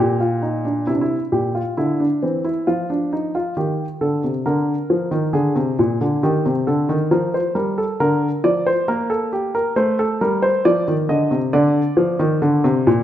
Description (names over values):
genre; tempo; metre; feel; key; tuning
classical, baroque-style two-part invention for grand piano; 68 BPM; 4/4; straight; unclear; A4 = 440 Hz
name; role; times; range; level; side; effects
warm baby grand piano; solo; 0.0-13.0 s; Bb2 to Eb5; -17 LUFS; equal; none
room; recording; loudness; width
moderate recital hall reverb, RT60 1.4 s; none; -17 LUFS; side -11 dB against mid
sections
0.9-13.0 A section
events
none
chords
0.0 Bb; 0.9 C7; 2.7 F; 4.4 Bb7/D; 6.2 Eb; 8.0 Bb/D; 9.8 Adim; 11.5 Bb/D (rootless)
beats
| 0.87 1.77 2.67 3.56 | 4.45 5.34 6.23 7.12 | 8.00 8.88 9.77 10.65 | 11.54 12.42